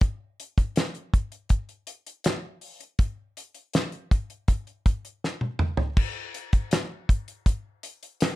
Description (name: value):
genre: indie pop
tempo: 81 BPM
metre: 4/4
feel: straight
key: none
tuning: none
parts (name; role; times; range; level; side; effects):
- damped 70s drum kit; drums; 0.0-8.4 s; crash cymbal, hi-hat, kick drum, snare drum, toms; -23 LUFS; equal; none
room: light reverb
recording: dark, warm production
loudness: -25 LUFS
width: side -18 dB against mid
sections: 0.0-6.0 A section; 6.0-8.4 B section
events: drum fill 5.2-6.0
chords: none